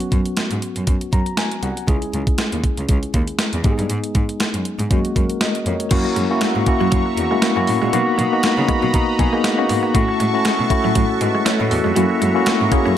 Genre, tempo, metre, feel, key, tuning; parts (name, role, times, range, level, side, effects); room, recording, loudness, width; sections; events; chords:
1980s-style pop; 119 BPM; 4/4; swing 55% on 16ths; A4 = 440 Hz
tine electric piano; accompaniment; 0.0-13.0 s; F#3 to B5; -20 LUFS; left 2 dB; fast stereo tremolo
clean 12-bit digital drum machine; drums; 0.0-12.8 s; crash cymbal, hi-hat, kick drum, snare drum; -20 LUFS; equal; overdrive, gated reverb
bright cello; bass; 0.1-12.9 s; C2 to C#3; -24 LUFS; right 1 dB
phased analog pad; sustained chords; 5.9-13.0 s; F#4 to C#6; -25 LUFS; right 1 dB; phaser, chorus
electric guitar at the edge of break-up; riff; 5.9-12.9 s; F#3 to C#4; -25 LUFS; right 5 dB; analog chorus, digital delay
light reverb, digital ambience; -16 LUFS; side -10 dB against mid
0.0-5.9 A section; 5.9-13.0 B section
tine electric piano fill 0.9-1.9, 8.4-9.9
0.0 F#sus4; 1.9 C#m; 3.6 G#m; 4.9 F#add9; 5.9 F#7; 7.9 Bmaj7; 9.9 A6; 12.0 F#7